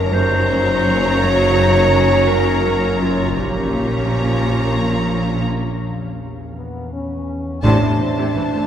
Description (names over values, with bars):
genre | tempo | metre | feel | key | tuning
cinematic | 84 BPM | 3/4 | straight | unclear | A4 = 438 Hz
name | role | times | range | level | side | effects
rich symphonic violin section | melody | 0.0-8.7 s | A5 to A#5 | -26 LUFS | left 2 dB | none
clear symphonic violin section | second line | 0.0-8.7 s | C5 to C#5 | -27 LUFS | left 2 dB | none
mellow clarinet | second line | 0.0-5.5 s | F4 to C#5 | -20 LUFS | left 1 dB | none
clear symphonic viola section | accompaniment | 0.0-8.6 s | C3 to A3 | -25 LUFS | right 2 dB | none
clear French horn section | sustained chords | 0.0-8.7 s | Bb3 to D4 | -24 LUFS | left 1 dB | none
ethereal airy pad | sustained chords | 0.0-8.7 s | C#4 to A#5 | -28 LUFS | equal | none
clear symphonic double bass section | bass | 0.0-8.4 s | F#1 to Bb1 | -23 LUFS | right 2 dB | none
rich symphonic cello section | bass | 0.0-8.6 s | F#2 to Bb2 | -23 LUFS | right 1 dB | none
metallic inharmonic drone | drone | 0.0-8.7 s | F#1 to E2 | -27 LUFS | equal | chorus, built-in reverb
rich studio cello section | riff | 0.1-8.6 s | F#2 to Bb3 | -28 LUFS | right 1 dB | none
timpani | percussion | 7.6-8.7 s | A2 | -25 LUFS | left 1 dB | none
room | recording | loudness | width
wet church reverb, RT60 3.6 s | none | -15 LUFS | side -9 dB against mid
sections
0.0-7.6 A section; 7.6-8.7 B section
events
break 5.5-7.6; band accent 7.6-8.4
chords
0.0 F#; 3.4 Bbm; 5.5 N.C.; 7.6 Am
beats
0.50 | 1.21 1.93 2.64 | 3.35 4.07 4.78 | 5.50 6.21 6.93 | 7.64 8.36